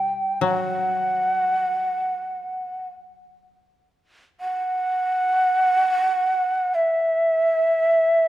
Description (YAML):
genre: japanese traditional, Japanese chamber music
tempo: free time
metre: none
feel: none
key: unclear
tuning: A4 = 439 Hz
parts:
  - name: breathy mellow shakuhachi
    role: melody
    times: 0.0-8.3 s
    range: E5 to G5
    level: -20 LUFS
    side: right 1 dB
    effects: none
  - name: koto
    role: accompaniment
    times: 0.0-3.6 s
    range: B2 to G3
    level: -26 LUFS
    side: left 4 dB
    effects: none
room: light reverb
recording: none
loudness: -19 LUFS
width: side -14 dB against mid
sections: 0.0-8.3 A section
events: slowing down 3.4-8.3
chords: none